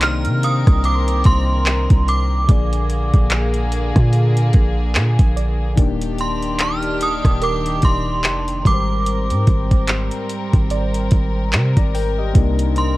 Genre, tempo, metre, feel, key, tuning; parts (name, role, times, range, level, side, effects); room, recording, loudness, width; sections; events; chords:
contemporary R&B; 73 BPM; 4/4; swing 58% on 16ths; A4 = 440 Hz
synth chime; melody; 0.0-13.0 s; C6 to F6; -22 LUFS; right 2 dB; ensemble chorus, cassette tape
soft electric-piano-like synth keys; accompaniment; 0.0-13.0 s; Ab2 to Bb5; -27 LUFS; left 7 dB; chorus, cassette tape
warm studio string section; sustained chords; 0.0-13.0 s; D3 to Bb4; -25 LUFS; equal; cassette tape
warm 808-style bass; bass; 0.0-13.0 s; Eb1 to C3; -19 LUFS; equal
smooth R&B drum kit; drums; 0.0-13.0 s; handclaps, hi-hat, kick drum, rim click; -16 LUFS; equal
soft round pluck; texture; 0.0-11.9 s; Bb4 to C6; -30 LUFS; right 10 dB; chorus, cassette tape, analog delay
digital ambience; home recording on cassette; -15 LUFS; side -18 dB against mid
0.0-13.0 A section
0.0 Cm9; 2.5 Bb7; 5.8 Ebmaj7; 8.7 Abmaj9; 12.4 Cm9